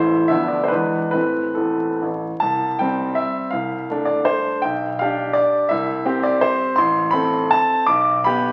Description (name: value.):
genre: classical, romantic triple-time dance for piano with dotted rhythms.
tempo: 129-179 BPM.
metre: 3/4.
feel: rubato.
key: C major.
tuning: A4 = 440 Hz.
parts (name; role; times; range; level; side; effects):
clear baby grand piano; solo; 0.0-8.5 s; A1 to D6; -20 LUFS; equal; none.
room: wet large studio reverb, RT60 1.2 s.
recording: very old 78 rpm record, vinyl crackle.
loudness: -20 LUFS.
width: mono.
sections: 0.0-2.4 A section; 2.4-8.5 B section.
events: none.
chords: 0.3 Bdim/D; 0.7 E7; 1.1 Am; 2.4 C; 3.5 Dm7/C; 4.6 G/B; 5.7 C; 6.8 Am; 7.9 G/B.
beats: 0.31 0.71 | 1.13 1.58 2.02 | 2.43 2.81 3.19 | 3.54 3.91 4.28 | 4.64 5.01 5.37 | 5.71 6.07 6.43 | 6.78 7.15 7.53 | 7.89 8.26.